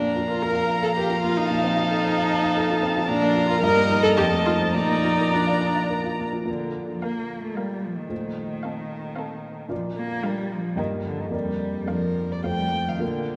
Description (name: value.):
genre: quick classical-period movement for piano quintet.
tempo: 103-115 BPM.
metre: 3/4.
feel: rubato.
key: Bb major.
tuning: A4 = 439 Hz.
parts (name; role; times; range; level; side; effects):
dark violin; melody; 0.0-12.9 s; F5 to Bb5; -32 LUFS; equal; none.
dark violin; second line; 0.0-13.0 s; A4 to G5; -32 LUFS; equal; none.
rich cello; second line; 0.0-13.4 s; D3 to Bb3; -32 LUFS; equal; none.
warm grand piano; accompaniment; 0.0-13.4 s; F2 to Bb5; -30 LUFS; equal; none.
warm viola; accompaniment; 0.0-12.9 s; Bb3 to Bb4; -27 LUFS; equal; none.
room: wet church reverb, RT60 3.5 s.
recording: recorded in a church or concert hall.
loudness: -24 LUFS.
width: mono.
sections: 0.0-6.5 A section; 6.5-13.4 A section.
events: none.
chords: 0.0 Bb5; 1.5 F7/Bb; 3.1 Bb; 3.6 Eb/G; 4.2 F7; 4.8 Bb; 6.5 Bb5; 8.1 F7/Bb; 9.7 Bb; 10.8 Eb/G; 11.3 Bb/F; 12.4 F.